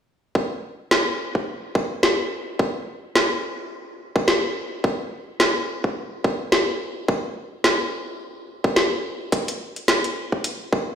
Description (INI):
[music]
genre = glitch hop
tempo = 107 BPM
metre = 4/4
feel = swing 57% on 16ths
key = none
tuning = none
[part]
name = electronic kick drum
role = drums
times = 0.4-10.9 s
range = none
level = -21 LUFS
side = equal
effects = high-pass filter on kick, high-pass filter on room
[part]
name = drum and bass drum kit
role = drums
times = 0.9-10.6 s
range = hi-hat, snare drum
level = -22 LUFS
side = equal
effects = none
[sound]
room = wet plate reverb, RT60 3.0 s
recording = played on a big sound system in a bare room, stone room reverb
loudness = -21 LUFS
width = side -8 dB against mid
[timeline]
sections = 0.4-10.9 A section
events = none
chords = none